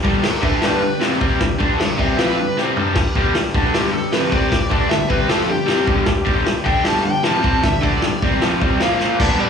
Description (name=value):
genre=garage rock duo or trio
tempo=154 BPM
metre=4/4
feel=straight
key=G mixolydian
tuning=A4 = 440 Hz
part: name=combo organ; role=sustained chords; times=0.0-9.5 s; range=F4 to F5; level=-28 LUFS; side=left 1 dB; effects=none
part: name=overdriven electric guitar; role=riff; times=0.0-9.5 s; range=F2 to F4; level=-18 LUFS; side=left 1 dB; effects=slapback echo
part: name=vintage drum kit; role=drums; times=0.0-9.3 s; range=crash cymbal, hi-hat, kick drum, snare drum, toms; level=-20 LUFS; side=equal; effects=none
part: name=overdriven slide guitar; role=melody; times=0.2-9.5 s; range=G4 to A5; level=-22 LUFS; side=equal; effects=slapback echo
room=moderate club reverb, RT60 0.5 s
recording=live gig heard through the venue's PA, club reverb, small room ambience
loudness=-15 LUFS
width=side -6 dB against mid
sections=0.0-9.2 A section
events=electric slide guitar solo 0.0-9.2; drum fill 2.6-3.0, 9.0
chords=0.0 G; 8.8 Bb5